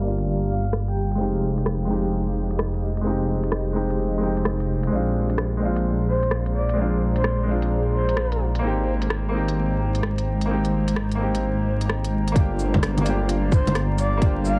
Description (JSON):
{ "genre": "future garage", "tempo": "129 BPM", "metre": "4/4", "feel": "swing 65% on 16ths", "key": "unclear", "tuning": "A4 = 440 Hz", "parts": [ { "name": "warm upright piano", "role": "accompaniment", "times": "0.0-14.6 s", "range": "G3 to G4", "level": "-29 LUFS", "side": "equal", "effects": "vintage 12-bit sampler grit, sidechain pumping, low-pass filter, analog delay" }, { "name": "granular cloud pad", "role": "sustained chords", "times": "0.3-14.6 s", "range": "Ab3 to Bb5", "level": "-34 LUFS", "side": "equal", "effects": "built-in reverb, sidechain pumping" }, { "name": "swelling detuned saw bass", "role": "bass", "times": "0.0-14.6 s", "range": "F1 to Bb1", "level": "-26 LUFS", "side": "equal", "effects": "tube saturation, sidechain pumping" }, { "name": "organic electronic drum kit", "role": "drums", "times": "0.2-14.6 s", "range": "bongos, cabasa, hi-hat, rim click", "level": "-30 LUFS", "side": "equal", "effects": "vintage 12-bit sampler grit, small room reverb, soft clipping on snare" }, { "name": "breathy flute-like synth lead", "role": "melody", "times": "0.5-1.3, 6.1-8.4, 13.5-14.6 s", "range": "C5 to G5", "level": "-33 LUFS", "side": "equal", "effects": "subtle chorus, analog delay" }, { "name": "electronic kick drum", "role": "drums", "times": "12.4-14.3 s", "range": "none", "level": "-21 LUFS", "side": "equal", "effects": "vintage 12-bit sampler grit, small room reverb" } ], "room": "light reverb", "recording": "dense, heavily limited modern master, vinyl crackle, low-pass filter", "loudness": "-23 LUFS", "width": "mono", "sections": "0.0-12.4 A section; 12.4-14.6 B section", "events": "filter sweep on ambient pad 0.0-12.4; filter sweep on upright piano 0.0-12.4; filter sweep 0.0-12.4", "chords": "0.0 Gm7; 1.2 Fm9; 4.9 Bb9; 8.6 Abmaj9; 12.4 Gm7", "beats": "0.27 0.73 | 1.20 1.66 2.12 2.59 | 3.06 3.52 3.99 4.45 | 4.92 5.38 5.85 6.31 | 6.78 7.24 7.71 8.17 | 8.64 9.10 9.57 10.03 | 10.50 10.96 11.43 11.89 | 12.36 12.82 13.29 13.75 | 14.22" }